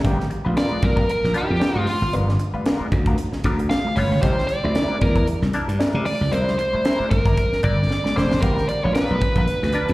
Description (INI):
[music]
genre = funk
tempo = 114 BPM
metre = 4/4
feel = swing 56% on 16ths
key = unclear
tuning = A4 = 440 Hz
[part]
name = clear trombone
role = second line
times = 0.0-9.8 s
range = D4 to G4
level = -31 LUFS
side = right 2 dB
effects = slapback echo
[part]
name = direct-recorded clean electric guitar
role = accompaniment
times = 0.0-9.9 s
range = G3 to C5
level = -30 LUFS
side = left 3 dB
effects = wah, slapback echo
[part]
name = slap bass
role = bass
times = 0.0-9.9 s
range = E1 to C3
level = -21 LUFS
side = equal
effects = none
[part]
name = crisp fusion drum kit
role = drums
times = 0.0-9.9 s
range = hi-hat, kick drum, snare drum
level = -23 LUFS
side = equal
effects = none
[part]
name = congas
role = percussion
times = 0.0-9.7 s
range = none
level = -31 LUFS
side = right 1 dB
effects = slapback echo
[part]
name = nasal lead guitar with a parked wah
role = melody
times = 0.6-9.9 s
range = F4 to F5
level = -23 LUFS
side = right 1 dB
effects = overdrive, slapback echo
[sound]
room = light reverb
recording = live gig heard through the venue's PA, recital hall reverb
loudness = -18 LUFS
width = side -18 dB against mid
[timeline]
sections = 0.0-9.9 A section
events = lead electric guitar solo 0.0-9.9; drum fill 7.9-8.4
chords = 0.0 G7#9; 4.2 C9; 8.4 G7#9